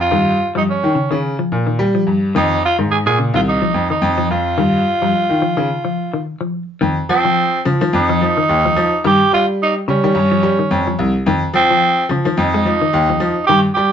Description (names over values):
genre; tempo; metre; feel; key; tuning
afrobeat; 108 BPM; 4/4; swing 56% on 16ths; F minor; A4 = 438 Hz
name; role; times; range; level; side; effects
raspy tenor saxophone; melody; 0.0-13.9 s; C4 to Ab4; -16 LUFS; right 2 dB; none
bright grand piano; bass; 0.0-13.9 s; C2 to G3; -17 LUFS; left 1 dB; none
semi-hollow electric guitar; arpeggios; 0.1-13.7 s; Db3 to Ab3; -21 LUFS; left 3 dB; none
room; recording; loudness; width
wet small room reverb, RT60 0.5 s; band playing live in one room, nothing above 7.6 kHz; -13 LUFS; side -8 dB against mid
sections
0.0-6.8 A section; 6.8-13.9 B section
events
break 5.7-6.8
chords
0.1 Gm7b5; 2.4 F7(no3); 4.6 Ebadd9/G; 6.8 F5; 9.0 Eb9; 11.3 F7(no3)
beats
| 0.12 0.68 1.23 1.79 | 2.35 2.91 3.47 4.03 | 4.58 5.14 5.70 6.26 | 6.82 7.38 7.93 8.49 | 9.05 9.60 10.16 10.72 | 11.27 11.83 12.38 12.94 | 13.49